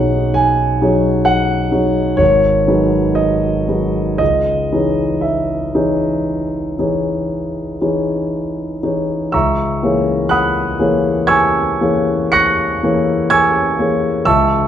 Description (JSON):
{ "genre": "classical, impressionist solo piano", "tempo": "56-67 BPM", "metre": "5/4", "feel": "rubato", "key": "C# minor", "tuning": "A4 = 439 Hz", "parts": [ { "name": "warm concert grand piano", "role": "solo", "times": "0.0-14.7 s", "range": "G#1 to C#7", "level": "-13 LUFS", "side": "equal", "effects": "none" } ], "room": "wet recital hall reverb, RT60 1.4 s", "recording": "dark, warm production", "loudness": "-13 LUFS", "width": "side -10 dB against mid", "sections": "0.0-9.3 A section; 9.3-14.7 A section", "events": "none", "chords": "0.0 B69; 2.2 G#m7; 4.2 C#madd9; 9.3 C#m6" }